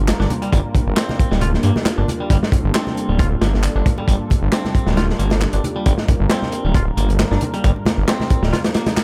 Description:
breakbeat, breaks; 135 BPM; 4/4; swing 54% on 16ths; G minor; A4 = 440 Hz
lush unison pad; sustained chords; 0.0-9.0 s; G3 to Bb4; -28 LUFS; equal; chorus, phaser, vintage 12-bit sampler grit, sidechain pumping
detuned saw bass; bass; 0.0-8.5 s; D1 to G2; -20 LUFS; equal; tube saturation
crunchy breakbeat drum kit; drums; 0.1-9.0 s; hi-hat, kick drum, snare drum; -21 LUFS; equal
electronic handclaps; drums; 0.1-9.0 s; -29 LUFS; equal
clean electric guitar; riff; 0.2-8.8 s; G3 to F4; -30 LUFS; equal; tube saturation, vintage 12-bit sampler grit, dub echo
congas and bongos; percussion; 0.3-9.0 s; -30 LUFS; equal
light reverb; -18 LUFS; mono
0.0-9.0 A section
0.0 Gm9

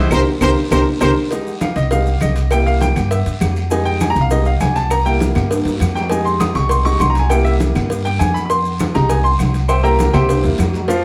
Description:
latin, salsa; 200 BPM; 4/4; straight; F minor; A4 = 440 Hz
clear trumpet section; melody; 0.0-1.1 s; E4 to C5; -24 LUFS; equal; plate reverb
bright upright piano; accompaniment; 0.0-11.0 s; F3 to Eb6; -21 LUFS; equal
upright bass; bass; 0.0-11.0 s; C2 to G2; -20 LUFS; equal
claves; percussion; 0.1-10.7 s; -36 LUFS; equal
congas; percussion; 0.1-11.0 s; -25 LUFS; equal
cowbell; percussion; 0.1-11.0 s; -28 LUFS; equal
guiro; percussion; 0.1-11.0 s; -38 LUFS; equal
maracas; percussion; 0.1-11.0 s; -40 LUFS; equal
timbales and agogo bells; percussion; 0.1-11.0 s; -28 LUFS; equal
wet studio reverb, RT60 0.8 s; heard from further back in the room; -16 LUFS; mono
0.0-1.3 A section; 1.3-10.9 B section
drum fill 0.1-1.3, 5.5-6.1, 10.3-10.9; band accent 0.1-1.3; upright piano solo 1.3-10.9
0.1 C5; 1.3 Fm7; 2.5 C7; 3.7 Fm7; 4.9 C7; 6.1 Fm7; 7.3 C7; 8.5 Fm7; 9.7 C7

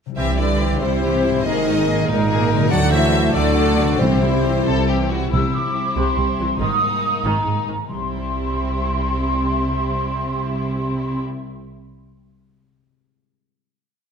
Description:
cinematic, heroic adventure film score; 94 BPM (dotted quarters); 6/8; straight; C lydian; A4 = 444 Hz
concert harp; arpeggios; 0.1-12.1 s; Ab2 to E5; -29 LUFS; left 8 dB
rich studio violin section; melody; 0.2-11.2 s; Eb4 to A4; -29 LUFS; left 6 dB
clear symphonic violin section; second line; 0.2-11.2 s; Bb3 to F#5; -27 LUFS; left 4 dB
mellow flute section; second line; 0.2-11.2 s; Bb4 to E6; -25 LUFS; equal
warm clarinet; second line; 0.2-5.1 s; Eb4 to D5; -28 LUFS; left 1 dB
rich symphonic viola section; accompaniment; 0.2-11.2 s; C3 to E4; -28 LUFS; equal
mellow French horn section; sustained chords; 0.2-5.1 s; Bb3 to F#4; -27 LUFS; left 6 dB
mellow trombone section; sustained chords; 0.2-5.1 s; G2 to Bb3; -28 LUFS; right 3 dB
mellow trumpet; stabs; 0.2-5.1 s; Eb4 to F#4; -27 LUFS; right 3 dB
warm chamber cello section; bass; 0.2-11.2 s; C2 to F#3; -26 LUFS; right 2 dB
warm studio double bass section; bass; 0.2-11.2 s; Ab1 to D2; -23 LUFS; right 3 dB
timpani; percussion; 4.0-11.9 s; C3; -26 LUFS; equal
wet scoring stage reverb, RT60 1.6 s; -17 LUFS; side -6 dB against mid
0.2-5.3 theme; 5.3-7.9 outro; 7.9-10.4 final chord
0.2 C; 1.5 Absus2; 2.7 D; 4.0 C; 6.6 Absus2; 7.9 C

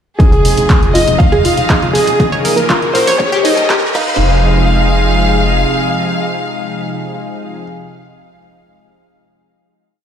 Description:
progressive house; 120 BPM; 4/4; straight; F minor; A4 = 440 Hz
dark grand piano; melody; 0.2-7.6 s; Ab4 to F5; -17 LUFS; equal; vintage 12-bit sampler grit, sidechain pumping, digital delay
clear symphonic violin section; second line; 0.2-7.6 s; Ab4 to F5; -19 LUFS; left 1 dB; sidechain pumping, digital delay
lush unison pad; sustained chords; 0.2-7.6 s; C3 to Bb4; -18 LUFS; equal; chorus, sidechain pumping
analog pluck; arpeggios; 0.2-4.4 s; Eb4 to Db5; -18 LUFS; right 1 dB; chorus, sidechain pumping, digital delay
deep house drum kit; drums; 0.2-4.0 s; crash cymbal, handclaps, hi-hat; -20 LUFS; equal; overdrive, sidechain pumping on hats, sidechain pumping on cymbals
electronic kick drum; drums; 0.2-4.0 s; -12 LUFS; equal; overdrive
riser; sound effects; 1.3-4.2 s; -23 LUFS; equal
drifting glass-harmonics texture; texture; 0.9-4.2 s; Eb5 to Eb6; -28 LUFS; equal
tight sequencer bass; bass; 0.3-5.7 s; Eb1 to Bb2; -16 LUFS; equal; sidechain pumping
light reverb; played on a big sound system in a bare room, stone room reverb, high-pass filter; -10 LUFS; side -8 dB against mid
0.2-4.2 build; 4.2-8.2 final hit
build-up 0.2-4.2; filter sweep on synth arpeggio sound 0.2-4.2; filter sweep 0.2-4.2; riser 1.3-4.2
0.2 Fm7; 2.2 Bbm; 3.2 Eb7; 3.9 Fm7

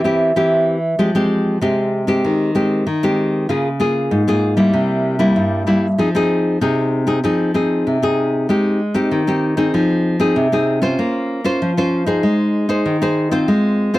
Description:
samba; 96 BPM; 4/4; straight; F minor, Ab major from 8.5 s; A4 = 440 Hz
nylon-string guitar; solo; 0.0-14.0 s; G2 to C5; -15 LUFS; equal
little or no reverb; dry, close 1970s-style studio recording; -15 LUFS; side -17 dB against mid
0.0-8.5 A section; 8.5-14.0 B section
0.0 C/E; 1.0 Fmadd9; 2.2 Abmaj7/Eb; 3.5 Db6; 4.7 C7; 6.0 Fm7; 8.5 Abmaj7; 9.7 Fm7; 11.0 Bbmadd9; 12.2 Ab; 13.5 Fm/Ab

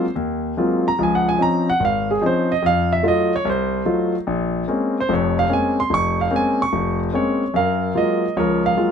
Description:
solo jazz; 146 BPM; 4/4; swing 68% on 8ths; Bb minor; A4 = 440 Hz
warm concert grand piano; solo; 0.0-8.9 s; F1 to Db6; -17 LUFS; equal
moderate studio reverb, RT60 0.5 s; minimal, uncompressed stereo recording; -17 LUFS; side -7 dB against mid
0.0-7.5 A section; 7.5-8.9 B section
grand piano solo 0.0-7.5
0.0 Ab13; 1.0 Dbmaj9; 2.6 F7b9; 4.3 Bbm9; 7.5 Gbmaj9

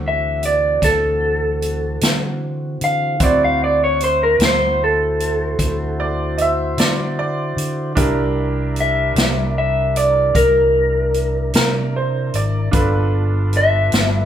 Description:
slow blues; 50 BPM (dotted quarters); 12/8; straight; A4 = 440 Hz
bright baby grand piano; accompaniment; 0.0-14.3 s; C4 to C5; -26 LUFS; right 2 dB
mellow tonewheel organ; sustained chords; 0.0-14.3 s; E3 to C5; -29 LUFS; left 1 dB; slow rotary speaker
fingered electric bass; bass; 0.0-14.3 s; G1 to D3; -21 LUFS; equal
electric guitar through a small old amp; melody; 0.1-14.3 s; A4 to F5; -17 LUFS; equal
swinging big-band drum kit; drums; 0.4-14.1 s; hi-hat, kick drum, snare drum; -19 LUFS; equal
bright upright piano; second line; 6.0-13.3 s; Bb4 to E5; -23 LUFS; right 2 dB
moderate large studio reverb, RT60 0.8 s; band playing live in one room; -15 LUFS; side -10 dB against mid
0.0-14.3 A section
0.0 D7; 8.0 C7; 12.7 G7

